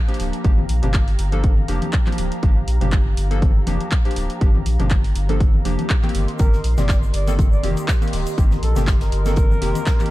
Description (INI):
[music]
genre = deep house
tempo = 121 BPM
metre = 4/4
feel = swing 55% on 16ths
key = G minor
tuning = A4 = 440 Hz
[part]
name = warm analog pad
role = sustained chords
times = 0.0-10.1 s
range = G4 to C6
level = -35 LUFS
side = right 1 dB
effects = chorus, sidechain pumping
[part]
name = warbly tape-like pad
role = texture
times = 1.2-10.1 s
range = C4 to Bb5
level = -38 LUFS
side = equal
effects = none
[part]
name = warm analog keys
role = stabs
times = 0.1-10.1 s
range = Eb3 to A4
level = -27 LUFS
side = equal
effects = chorus, vintage 12-bit sampler grit, sidechain pumping
[part]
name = punchy analog drum machine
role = drums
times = 0.1-10.1 s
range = handclaps, hi-hat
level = -30 LUFS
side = equal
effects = overdrive
[part]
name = round analog bass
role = bass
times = 0.2-9.7 s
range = D1 to Bb1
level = -20 LUFS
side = equal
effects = sidechain pumping
[part]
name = electronic kick drum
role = drums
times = 0.4-10.0 s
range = none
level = -17 LUFS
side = equal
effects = none
[part]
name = congas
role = percussion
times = 0.6-10.1 s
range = none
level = -30 LUFS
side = left 6 dB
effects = none
[part]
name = trumpet with bucket mute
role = melody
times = 6.4-10.1 s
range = A4 to D5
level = -29 LUFS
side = right 1 dB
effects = tape echo
[part]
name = modern studio drum kit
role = drums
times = 6.4-10.1 s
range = hi-hat, snare drum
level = -39 LUFS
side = left 2 dB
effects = sidechain pumping on hats, high-pass filter on hats, high-pass filter on snare, high-pass filter on room
[part]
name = egg shaker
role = percussion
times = 6.4-10.1 s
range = none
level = -43 LUFS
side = left 2 dB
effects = none
[sound]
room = little or no reverb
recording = dark, warm production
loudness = -16 LUFS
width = side -17 dB against mid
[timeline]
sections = 0.0-10.1 A section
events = none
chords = 0.0 Gm7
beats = | 0.45 0.94 1.44 1.93 | 2.43 2.92 3.42 3.92 | 4.41 4.91 5.41 5.90 | 6.40 6.89 7.39 7.88 | 8.38 8.88 9.37 9.87